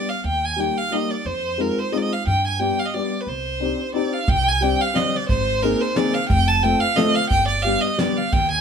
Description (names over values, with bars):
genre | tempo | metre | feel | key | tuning
musette waltz | 178 BPM | 3/4 | swing 54% on 8ths | C minor | A4 = 438 Hz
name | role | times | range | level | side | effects
rich violin | melody | 0.0-8.6 s | Bb4 to A5 | -21 LUFS | right 2 dB | none
dark upright piano | accompaniment | 0.0-8.2 s | G3 to A4 | -23 LUFS | left 4 dB | none
upright bass | bass | 0.2-8.6 s | F1 to G2 | -24 LUFS | equal | none
soft brush drum kit | drums | 4.3-8.4 s | kick drum, ride cymbal, snare drum | -25 LUFS | right 1 dB | none
room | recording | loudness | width
moderate studio reverb, RT60 0.9 s | band playing live in one room | -18 LUFS | side -7 dB against mid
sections
0.0-4.3 A section; 4.3-8.6 A section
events
none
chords
0.2 Eb; 1.2 Fm7; 2.3 G; 3.3 Cmadd9; 4.3 Csus2; 5.3 Abadd9; 6.3 F; 7.3 G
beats
| 0.23 0.57 0.91 | 1.25 1.58 1.92 | 2.26 2.59 2.93 | 3.27 3.60 3.94 | 4.28 4.62 4.96 | 5.30 5.63 5.97 | 6.30 6.64 6.98 | 7.31 7.65 7.99 | 8.33